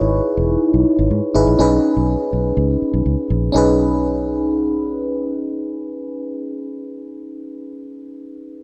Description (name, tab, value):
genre	1980s-style pop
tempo	123 BPM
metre	4/4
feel	straight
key	B major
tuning	A4 = 441 Hz
part	FM electric piano	accompaniment	0.0-8.6 s	C#4 to C#5	-20 LUFS	equal	chorus, phaser
part	fingered electric bass	bass	0.0-7.9 s	E1 to G#2	-22 LUFS	equal	none
room	moderate lush hall reverb, RT60 3.1 s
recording	none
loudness	-18 LUFS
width	mono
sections	0.0-3.5 A section; 3.5-7.4 B section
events	none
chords	0.0 Emaj7; 1.6 B69